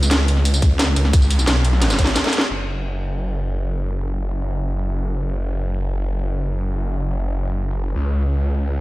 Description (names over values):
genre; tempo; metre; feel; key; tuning
dark technical drum and bass; 176 BPM; 4/4; straight; unclear; A4 = 442 Hz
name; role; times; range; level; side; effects
snarling distorted saw bass; bass; 0.0-8.8 s; F#1 to C#2; -20 LUFS; equal; overdrive, sidechain pumping
drum and bass drum kit; drums; 0.0-2.6 s; crash cymbal, hi-hat, snare drum, tambourine; -20 LUFS; equal; low-pass filter on snare, low-pass filter on hats, low-pass filter on perc, low-pass filter on cymbals, low-pass filter on room
breakbeat sampler-style drum kit; drums; 0.1-2.5 s; ride cymbal, snare drum; -29 LUFS; equal; none
electronic kick drum; drums; 0.6-2.1 s; none; -15 LUFS; equal; none
room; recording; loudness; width
little or no reverb; played on a big sound system in a bare room, stone room reverb; -18 LUFS; side -18 dB against mid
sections
0.0-2.5 A section; 2.5-8.8 B section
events
drop 0.0-2.5; drum fill 1.8-2.5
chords
none